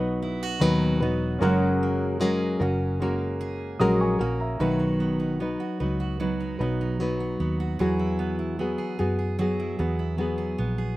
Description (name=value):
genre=acoustic pop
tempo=75 BPM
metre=4/4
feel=straight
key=B major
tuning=A4 = 440 Hz
part: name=nylon-string guitar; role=accompaniment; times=0.0-11.0 s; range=B2 to B4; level=-26 LUFS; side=left 1 dB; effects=none
part: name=warm concert grand piano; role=accompaniment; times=0.0-4.8 s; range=C#4 to D#6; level=-32 LUFS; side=equal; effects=slapback echo
part: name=fingerpicked steel-string acoustic guitar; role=arpeggios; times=0.0-11.0 s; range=F#3 to G#4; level=-33 LUFS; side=right 6 dB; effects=none
part: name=vintage muted fingered electric bass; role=bass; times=0.0-11.0 s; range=E1 to F#2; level=-28 LUFS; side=right 1 dB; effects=none
room=little or no reverb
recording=recorded outdoors, with no room sound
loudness=-23 LUFS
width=side -17 dB against mid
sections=0.0-4.6 A section; 4.6-11.0 B section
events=none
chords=0.0 B; 1.4 F#add9; 4.6 B; 7.8 Eadd9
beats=0.62 | 1.42 2.22 3.01 3.81 | 4.61 5.40 6.20 7.00 | 7.80 8.60 9.39 10.19